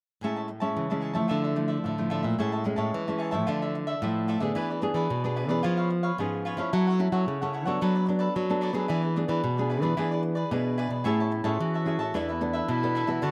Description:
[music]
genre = samba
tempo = 111 BPM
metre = 4/4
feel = straight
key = A major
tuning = A4 = 440 Hz
[part]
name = cavaquinho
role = accompaniment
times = 0.2-13.3 s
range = D4 to A5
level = -35 LUFS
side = equal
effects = none
[part]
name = nylon-string guitar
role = accompaniment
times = 0.2-13.3 s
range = A2 to A4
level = -32 LUFS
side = equal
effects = none
[part]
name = nylon-string guitar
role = bass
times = 0.2-13.3 s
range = E2 to F#3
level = -31 LUFS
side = equal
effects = none
[part]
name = clear clarinet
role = second line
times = 11.0-13.3 s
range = E4 to F#4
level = -33 LUFS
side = equal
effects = none
[sound]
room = little or no reverb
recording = recorded outdoors, with no room sound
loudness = -28 LUFS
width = mono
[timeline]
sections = 0.2-2.4 A section; 2.4-13.3 B section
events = none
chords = 0.2 Amaj7; 1.3 Dmadd9; 2.4 Amaj7; 3.5 Dmadd9; 4.6 E7; 5.6 C#7/E#; 6.7 F#m7; 7.8 Bm7/F#; 8.9 E7; 11.1 Amaj7; 12.2 E7sus4

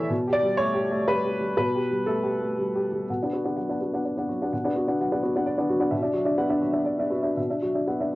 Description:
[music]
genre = neoclassical minimalist piano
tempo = 117-130 BPM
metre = 3/4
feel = rubato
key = B minor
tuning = A4 = 440 Hz
[part]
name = warm upright piano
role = solo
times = 0.0-8.2 s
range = B2 to F#5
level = -23 LUFS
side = equal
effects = cassette tape
[sound]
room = wet studio ambience, RT60 0.5 s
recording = home recording on cassette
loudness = -23 LUFS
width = side -18 dB against mid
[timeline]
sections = 0.0-3.1 A section; 3.1-8.2 B section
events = none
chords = 0.1 Gsus2/B; 3.1 Bm

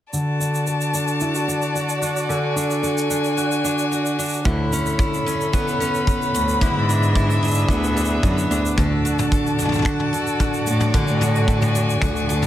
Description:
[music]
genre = folktronica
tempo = 111 BPM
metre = 4/4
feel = straight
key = D lydian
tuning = A4 = 440 Hz
[part]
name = warm string quartet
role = sustained chords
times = 0.1-12.5 s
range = F#4 to B5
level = -24 LUFS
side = left 1 dB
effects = none
[part]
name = picked steel-string acoustic guitar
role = arpeggios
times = 0.1-12.5 s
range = D3 to A4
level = -22 LUFS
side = equal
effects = vintage 12-bit sampler grit, low-pass filter, ping-pong delay
[part]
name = vintage brush drum kit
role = drums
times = 0.1-12.5 s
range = finger snaps, shaker, toms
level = -28 LUFS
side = equal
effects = none
[part]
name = warm cello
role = bass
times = 4.5-12.5 s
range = D2 to A2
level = -22 LUFS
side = equal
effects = none
[part]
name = kick drum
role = drums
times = 4.5-12.1 s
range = none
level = -24 LUFS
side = equal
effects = none
[sound]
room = light reverb, small room ambience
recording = none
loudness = -18 LUFS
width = side -12 dB against mid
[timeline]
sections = 0.1-8.8 A section; 8.8-12.5 B section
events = filter sweep on steel-string acoustic guitar 0.1-8.8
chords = 0.1 D; 4.5 Aadd9/D; 6.6 E; 8.8 D

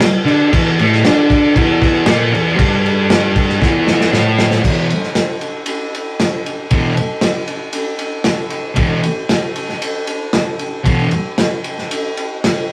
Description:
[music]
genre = garage rock duo or trio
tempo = 116 BPM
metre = 4/4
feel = straight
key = E minor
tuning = A4 = 440 Hz
[part]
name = thick fuzz guitar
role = riff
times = 0.0-11.1 s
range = E2 to D4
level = -16 LUFS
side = equal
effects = distortion
[part]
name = crunchy breakbeat drum kit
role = drums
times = 0.0-12.6 s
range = crash cymbal, kick drum, ride cymbal, snare drum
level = -18 LUFS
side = equal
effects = none
[sound]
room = wet booth ambience, RT60 0.3 s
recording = rough rehearsal-room recording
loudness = -15 LUFS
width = mono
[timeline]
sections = 0.0-4.6 A section; 4.6-12.7 B section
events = drum fill 3.6-4.6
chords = 0.0 Em; 4.6 E5

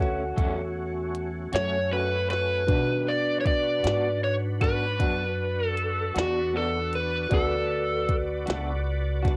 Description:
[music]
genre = slow blues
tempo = 52 BPM (dotted quarters)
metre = 12/8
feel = straight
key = unclear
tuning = A4 = 440 Hz
[part]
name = clean lap steel guitar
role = second line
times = 0.0-1.3 s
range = F#4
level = -37 LUFS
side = equal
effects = analog delay
[part]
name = electric guitar through a small old amp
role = accompaniment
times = 0.0-9.4 s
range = B2 to F#4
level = -35 LUFS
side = equal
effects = tremolo
[part]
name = tine electric piano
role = accompaniment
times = 0.0-9.4 s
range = D4 to D5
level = -36 LUFS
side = equal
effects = none
[part]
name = overdriven tonewheel organ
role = sustained chords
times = 0.0-9.4 s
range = D#3 to D5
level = -41 LUFS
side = equal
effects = chorus vibrato, slow rotary speaker
[part]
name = upright bass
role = bass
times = 0.0-9.4 s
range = C#2 to B2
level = -33 LUFS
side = equal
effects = none
[part]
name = minimal click drum kit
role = drums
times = 0.0-9.4 s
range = hi-hat, kick drum, snare drum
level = -29 LUFS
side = equal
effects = none
[part]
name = overdriven slide guitar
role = melody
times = 1.5-8.2 s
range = F#4 to D5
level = -29 LUFS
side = equal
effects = none
[sound]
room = light reverb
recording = home recording on cassette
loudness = -26 LUFS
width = mono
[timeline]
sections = 0.0-9.4 A section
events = none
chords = 0.0 F#m; 2.7 Bm

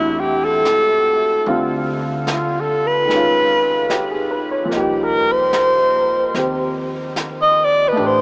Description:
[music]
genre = jazz ballad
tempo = 74 BPM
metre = 4/4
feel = swing 69% on 8ths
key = unclear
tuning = A4 = 435 Hz
[part]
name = breathy alto saxophone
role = melody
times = 0.0-8.2 s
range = E4 to Eb5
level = -19 LUFS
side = equal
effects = none
[part]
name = warm upright piano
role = accompaniment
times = 0.0-8.2 s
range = C3 to C#5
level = -25 LUFS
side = equal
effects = none
[part]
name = upright bass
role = bass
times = 0.0-8.2 s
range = A1 to E2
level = -34 LUFS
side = equal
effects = none
[part]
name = vintage brush drum kit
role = drums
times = 0.7-8.2 s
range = brushed snare drum, hi-hat, snare drum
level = -32 LUFS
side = equal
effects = none
[sound]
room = wet huge ambient reverb, RT60 8.8 s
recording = in a vast, echoing space, small speaker sound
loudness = -17 LUFS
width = mono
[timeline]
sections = 0.0-8.2 A section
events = alto saxophone solo 0.0-8.2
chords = 0.0 Am7; 1.5 Dm7; 3.1 C#9; 4.7 Cm7

